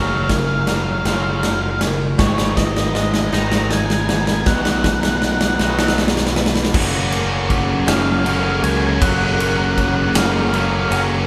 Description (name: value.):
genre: post-rock.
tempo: 53 BPM (dotted quarters).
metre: 6/8.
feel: straight.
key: F# major.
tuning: A4 = 440 Hz.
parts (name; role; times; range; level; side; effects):
octave-fuzz lead guitar; melody; 0.0-11.0 s; C#5 to A#5; -26 LUFS; equal; distortion.
clear symphonic string section; sustained chords; 0.0-11.3 s; D#3 to A#5; -32 LUFS; equal; none.
twangy electric guitar; arpeggios; 0.0-11.3 s; G#2 to E#4; -31 LUFS; equal; none.
distorted electric guitar; riff; 0.0-6.7 s; F#2 to G#3; -27 LUFS; equal; distortion.
growling fingered electric bass; bass; 0.0-11.3 s; F#1 to C#2; -25 LUFS; equal; overdrive.
vibraphone with medium hard mallets; arpeggios; 0.3-11.3 s; A#4 to D#5; -34 LUFS; equal; none.
big rock drum kit; drums; 0.3-11.1 s; crash cymbal, kick drum, ride cymbal, snare drum; -22 LUFS; equal; none.
overdriven electric guitar; riff; 6.7-11.3 s; F#2 to C#4; -22 LUFS; equal; none.
room: moderate large studio reverb, RT60 1.3 s.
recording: band playing live in one room, lossy compression artefacts.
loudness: -18 LUFS.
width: mono.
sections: 0.0-6.7 A section; 6.7-11.3 B section.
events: build-up 0.0-6.7; drum fill 0.0-6.7.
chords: 0.0 F#maj7; 2.2 G#madd9; 4.5 Bmaj7; 6.7 F#maj7.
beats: 1.05 | 2.19 3.33 | 4.47 5.60 | 6.74 7.88 | 9.02 10.15.